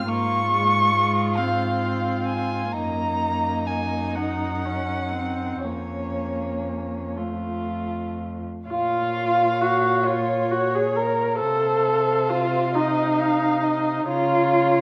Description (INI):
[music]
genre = classical, slow romantic movement for string quartet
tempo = 38-47 BPM (dotted quarters)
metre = 6/8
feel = rubato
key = Bb minor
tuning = A4 = 439 Hz
[part]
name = muted violin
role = melody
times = 0.0-14.8 s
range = Db5 to Db6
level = -30 LUFS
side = equal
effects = none
[part]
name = muted violin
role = second line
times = 0.0-14.8 s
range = Db4 to F5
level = -30 LUFS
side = equal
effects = none
[part]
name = muted viola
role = accompaniment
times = 0.0-14.8 s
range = Ab3 to Bb4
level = -26 LUFS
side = equal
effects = none
[part]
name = muted cello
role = bass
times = 0.0-14.8 s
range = F2 to Db3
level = -32 LUFS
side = equal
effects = none
[sound]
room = moderate recital hall reverb, RT60 1.4 s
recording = none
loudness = -23 LUFS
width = mono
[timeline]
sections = 0.0-8.7 A section; 8.7-14.8 B section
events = none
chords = 0.1 Fm/Ab; 2.7 Ebm/Gb; 5.6 Bbm/F; 7.2 F; 8.7 Bbm; 11.4 F7/C; 14.1 Bbm/Db